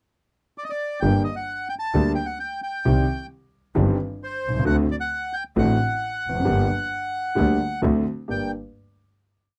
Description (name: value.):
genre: tango.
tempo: 132 BPM.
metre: 4/4.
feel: rubato.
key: G harmonic minor.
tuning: A4 = 441 Hz.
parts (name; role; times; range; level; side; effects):
bandoneon; melody; 0.6-8.5 s; C5 to A5; -29 LUFS; equal; none.
warm concert grand piano; accompaniment; 1.0-8.5 s; G1 to G4; -25 LUFS; equal; none.
rich double bass; bass; 1.0-8.5 s; F1 to D2; -27 LUFS; equal; none.
room: little or no reverb.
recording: dry, close 1970s-style studio recording.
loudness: -24 LUFS.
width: mono.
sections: 0.0-1.0 pickup bar; 1.0-8.3 A section; 8.3-9.6 final chord.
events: none.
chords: 0.0 N.C.; 1.0 Gm; 2.8 Cm; 4.7 D7; 6.5 Gm; 7.8 D7; 8.3 Gm.